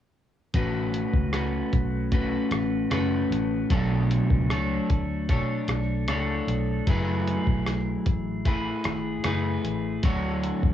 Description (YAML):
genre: indie pop, bedroom pop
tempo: 76 BPM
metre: 4/4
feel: straight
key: A major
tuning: A4 = 439 Hz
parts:
  - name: electric guitar at the edge of break-up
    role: accompaniment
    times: 0.5-10.7 s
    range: B2 to C#5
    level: -26 LUFS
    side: left 1 dB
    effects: lush chorus, warbly pitch drift
  - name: vintage muted picked electric bass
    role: bass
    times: 0.5-10.7 s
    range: F#1 to B2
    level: -29 LUFS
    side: equal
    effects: tube saturation
  - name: lo-fi sampler-style drum kit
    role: drums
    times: 0.5-10.7 s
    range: hi-hat, kick drum, rim click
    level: -26 LUFS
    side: equal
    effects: none
room: moderate studio reverb, RT60 0.6 s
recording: worn, warbling old tape, cassette tape, warbly pitch drift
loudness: -23 LUFS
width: side -10 dB against mid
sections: 0.5-10.7 A section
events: none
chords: 0.5 A69; 3.7 Bm9; 6.9 F#m11; 10.0 Dmaj7